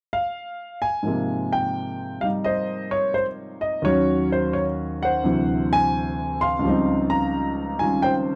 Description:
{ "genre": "solo jazz", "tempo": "86 BPM", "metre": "4/4", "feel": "swing 69% on 8ths", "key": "Ab major", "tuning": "A4 = 440 Hz", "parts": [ { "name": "warm concert grand piano", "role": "solo", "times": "0.1-8.4 s", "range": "Db2 to C6", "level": "-23 LUFS", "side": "equal", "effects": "none" } ], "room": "little or no reverb", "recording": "dry, close 1970s-style studio recording", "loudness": "-23 LUFS", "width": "mono", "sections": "0.0-1.0 A section; 1.0-8.4 B section", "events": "none", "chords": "0.0 N.C.; 1.0 Ab69; 3.8 Ebm7; 5.2 D9; 6.6 Dbmaj9#11" }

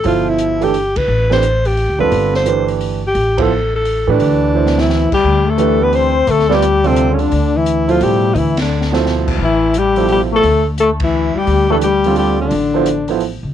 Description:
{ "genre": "modal jazz", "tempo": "173 BPM", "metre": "3/4", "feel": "swing 65% on 8ths", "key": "D dorian", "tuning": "A4 = 440 Hz", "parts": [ { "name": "breathy alto saxophone", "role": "melody", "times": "0.0-13.2 s", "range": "C4 to C5", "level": "-16 LUFS", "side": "left 1 dB", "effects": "cassette tape" }, { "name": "warm baby grand piano", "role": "accompaniment", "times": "0.0-13.2 s", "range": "B2 to D5", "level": "-17 LUFS", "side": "right 10 dB", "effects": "none" }, { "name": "open jazz drum kit", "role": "drums", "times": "0.0-13.3 s", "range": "crash cymbal, hi-hat, kick drum, ride cymbal, snare drum", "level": "-26 LUFS", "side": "left 1 dB", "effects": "none" }, { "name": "upright bass", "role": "bass", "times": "0.1-13.5 s", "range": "G1 to A2", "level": "-18 LUFS", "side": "left 1 dB", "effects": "none" }, { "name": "trombone with metal mute", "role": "second line", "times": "4.8-13.2 s", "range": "C3 to C4", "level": "-18 LUFS", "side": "left 9 dB", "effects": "none" } ], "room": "light reverb", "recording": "home recording on cassette", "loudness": "-12 LUFS", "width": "side -10 dB against mid", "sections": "0.0-13.5 A section", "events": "band accent 0.9, 3.3, 8.5, 11.0; drum fill 4.6-4.9, 8.7-9.1", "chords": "0.0 D9sus4" }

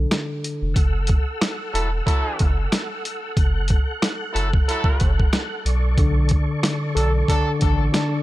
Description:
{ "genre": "hip hop, boom-bap hip-hop", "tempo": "92 BPM", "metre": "4/4", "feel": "swing 56% on 16ths", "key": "F# minor", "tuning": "A4 = 440 Hz", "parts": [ { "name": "mellow tine electric piano", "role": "accompaniment", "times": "0.0-0.8, 6.0-8.2 s", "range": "D3 to A4", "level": "-23 LUFS", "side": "left 2 dB", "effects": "medium stereo tremolo, cassette tape, high-pass filter, low-pass filter" }, { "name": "sub bass with octave", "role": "bass", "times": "0.0-7.9 s", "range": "E1 to B1", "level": "-22 LUFS", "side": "equal", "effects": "none" }, { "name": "boom bap sampler-style drum kit", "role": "drums", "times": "0.1-8.1 s", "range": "hi-hat, kick drum, rim click, snare drum", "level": "-20 LUFS", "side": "equal", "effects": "none" }, { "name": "tonewheel organ", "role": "sustained chords", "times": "0.7-8.2 s", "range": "A4 to F#6", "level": "-30 LUFS", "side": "right 1 dB", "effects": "chorus vibrato, fast rotary speaker, high-pass filter, low-pass filter" }, { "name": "bright trumpet section", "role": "stabs", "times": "1.7-7.5 s", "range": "F#3 to A4", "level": "-27 LUFS", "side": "right 1 dB", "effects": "high-pass filter, low-pass filter, ping-pong delay" } ], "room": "digital ambience", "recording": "none", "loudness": "-18 LUFS", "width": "side -16 dB against mid", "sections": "0.8-8.2 A section", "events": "break 0.0-0.8", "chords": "0.0 Bm7 (rootless); 0.8 F#m7; 5.7 Bm9" }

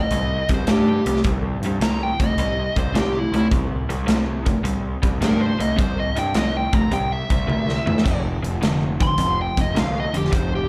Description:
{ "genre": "blues rock power trio and southern rock", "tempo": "106 BPM", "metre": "4/4", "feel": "swing 68% on 8ths", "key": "unclear", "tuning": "A4 = 438 Hz", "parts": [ { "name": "dark smooth lead guitar", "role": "melody", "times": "0.0-10.7 s", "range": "E4 to C6", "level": "-28 LUFS", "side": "equal", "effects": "overdrive, slapback echo" }, { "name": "crunchy overdriven guitar", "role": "riff", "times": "0.0-10.7 s", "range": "F2 to A3", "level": "-26 LUFS", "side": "equal", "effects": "slapback echo" }, { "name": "fuzz picked electric bass", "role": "bass", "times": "0.1-10.6 s", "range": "F1 to G2", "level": "-27 LUFS", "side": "equal", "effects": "overdrive" }, { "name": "big rock drum kit", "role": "drums", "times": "0.1-10.5 s", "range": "hi-hat, kick drum, snare drum, splash cymbal, toms", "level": "-26 LUFS", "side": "equal", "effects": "none" } ], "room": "light reverb, small room ambience", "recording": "live gig heard through the venue's PA, club reverb", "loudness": "-21 LUFS", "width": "mono", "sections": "0.0-10.7 A section", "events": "drum fill 7.5-8.1", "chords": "0.0 C5; 8.1 F5" }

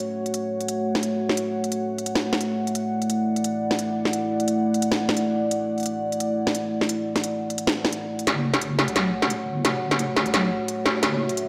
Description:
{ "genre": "half-time drum and bass", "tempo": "174 BPM", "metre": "4/4", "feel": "swing 54% on 16ths, half-time", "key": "F# minor", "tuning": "A4 = 440 Hz", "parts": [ { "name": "dark analog pad", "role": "sustained chords", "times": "0.0-11.5 s", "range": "A3 to F#5", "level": "-27 LUFS", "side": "equal", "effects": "chorus" }, { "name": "industrial drum kit", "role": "drums", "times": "0.3-11.4 s", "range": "hi-hat, snare drum", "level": "-26 LUFS", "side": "equal", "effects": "studio reverb" }, { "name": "deep soft wobble bass", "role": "bass", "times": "8.3-11.5 s", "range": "E1 to B1", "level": "-30 LUFS", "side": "equal", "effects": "chorus, high-pass filter" } ], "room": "moderate lush hall reverb, RT60 1.9 s", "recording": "dark, warm production", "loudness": "-24 LUFS", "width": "mono", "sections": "0.0-8.3 A section; 8.3-11.5 B section", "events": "build-up 8.3-11.5; drum fill 8.3-11.5", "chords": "0.0 F#m; 2.8 Dadd9; 8.3 F#m" }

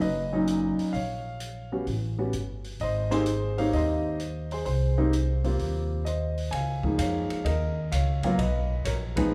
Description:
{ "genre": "jazz piano trio", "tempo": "129 BPM", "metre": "4/4", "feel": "swing 67% on 8ths", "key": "Ab major", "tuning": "A4 = 440 Hz", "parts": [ { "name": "warm upright piano", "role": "melody", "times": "0.0-9.3 s", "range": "A#2 to Ab5", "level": "-30 LUFS", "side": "equal", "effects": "none" }, { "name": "upright bass", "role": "bass", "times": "0.0-9.3 s", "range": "F#1 to F2", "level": "-31 LUFS", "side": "equal", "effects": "none" }, { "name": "open jazz drum kit", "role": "drums", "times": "0.0-9.2 s", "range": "hi-hat, kick drum, ride cymbal, snare drum", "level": "-41 LUFS", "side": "equal", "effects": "none" } ], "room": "moderate recital hall reverb, RT60 1.7 s", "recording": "recorded in a church or concert hall", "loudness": "-28 LUFS", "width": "mono", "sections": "0.0-6.5 A section; 6.5-9.3 B section", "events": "none", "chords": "0.0 Bmaj7; 0.9 Bbm; 1.9 A7(no3); 2.8 Abmaj9; 6.5 Db69; 8.4 Abmadd9" }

